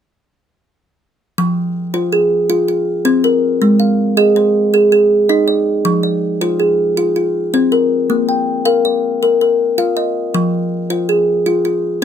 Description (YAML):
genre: southern african traditional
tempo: 107 BPM (dotted quarters)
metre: 12/8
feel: straight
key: F dorian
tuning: A4 = 440 Hz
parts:
  - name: kalimba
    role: solo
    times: 1.4-12.0 s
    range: F3 to G5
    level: -12 LUFS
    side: equal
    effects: none
room: light reverb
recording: close, detailed microphones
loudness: -12 LUFS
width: side -9 dB against mid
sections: 1.4-12.0 A section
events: none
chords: 1.4 Fm; 3.6 Ab; 5.9 Fm; 8.1 Bb; 10.3 Fm